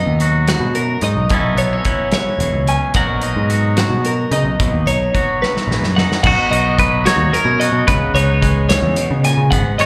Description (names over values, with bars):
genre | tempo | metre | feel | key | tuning
math rock and midwest emo | 73 BPM (dotted quarters) | 6/8 | straight | B major | A4 = 438 Hz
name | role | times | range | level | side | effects
twangy electric guitar | accompaniment | 0.0-9.9 s | F#2 to A#4 | -23 LUFS | equal | spring reverb, slapback echo
twelve-string electric guitar | arpeggios | 0.0-9.9 s | F#4 to G#5 | -23 LUFS | equal | none
picked electric bass | bass | 0.0-9.9 s | E1 to C#3 | -20 LUFS | equal | none
loose indie drum kit | drums | 0.2-9.9 s | crash cymbal, hi-hat, kick drum, snare drum | -22 LUFS | equal | none
semi-hollow electric guitar | melody | 6.3-9.9 s | F#4 to C#5 | -20 LUFS | equal | slapback echo
room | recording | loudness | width
light reverb, small room ambience | live gig heard through the venue's PA, club reverb | -16 LUFS | mono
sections
0.0-6.2 A section; 6.2-9.9 B section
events
drum fill 5.4-6.2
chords
0.0 Bmaj7; 1.3 F#m7/B; 3.0 D#m; 4.6 B; 6.2 Bmaj9; 7.9 C#9sus4